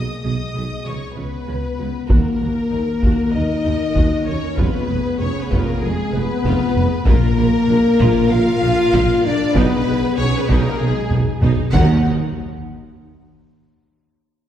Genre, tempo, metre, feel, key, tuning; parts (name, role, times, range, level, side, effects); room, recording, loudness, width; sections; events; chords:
cinematic, epic orchestral film score; 96 BPM; 4/4; straight; Eb minor; A4 = 440 Hz
warm symphonic violin section; melody; 0.0-12.1 s; Ab4 to Eb6; -31 LUFS; left 5 dB
warm symphonic violin section; second line; 0.0-12.1 s; Ab4 to Gb5; -28 LUFS; equal
mellow French horn section; sustained chords; 0.0-12.0 s; F3 to Ab4; -20 LUFS; left 2 dB
mellow tuba; bass; 0.0-12.0 s; F1 to Eb2; -25 LUFS; right 2 dB
warm symphonic viola section; accompaniment; 0.2-12.1 s; Ab3 to Bb4; -29 LUFS; equal
warm chamber double bass section; bass; 0.2-12.1 s; F1 to Eb2; -25 LUFS; right 2 dB
warm symphonic cello section; bass; 0.2-12.1 s; Eb2 to Db3; -24 LUFS; right 2 dB
taiko ensemble; drums; 2.1-12.9 s; -21 LUFS; equal
timpani; percussion; 2.1-3.0, 7.1-8.0, 11.7-12.0 s; Bb2 to Eb3; -26 LUFS; left 2 dB
wet scoring stage reverb, RT60 1.8 s; heard from further back in the room; -15 LUFS; side -10 dB against mid
0.0-2.1 A section; 2.1-12.0 B section; 12.0-14.5 C section
drum fill 11.1-12.0
0.0 Abm/Cb; 0.9 Db; 2.1 Ebm; 4.6 Fdim; 7.1 Bb; 9.6 Abm/Cb; 11.7 Ebm; 12.0 N.C.